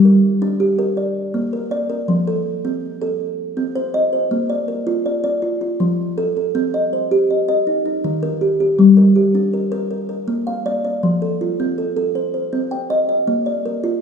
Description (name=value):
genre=southern african traditional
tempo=107 BPM (dotted quarters)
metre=12/8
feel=straight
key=Bb major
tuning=A4 = 440 Hz
part: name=kalimba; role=solo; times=0.0-14.0 s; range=Eb3 to G5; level=-16 LUFS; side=equal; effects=none
room=wet large studio reverb, RT60 1.5 s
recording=band playing live in one room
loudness=-16 LUFS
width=side -6 dB against mid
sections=0.0-4.3 A section; 4.3-14.0 B section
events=none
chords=0.0 Gm; 1.0 Bb; 2.1 F; 3.2 Cm; 4.3 Bb; 5.4 F; 6.5 Cm; 7.7 Eb; 8.8 Gm; 9.9 Bb; 11.0 F; 12.2 Cm; 13.3 Bb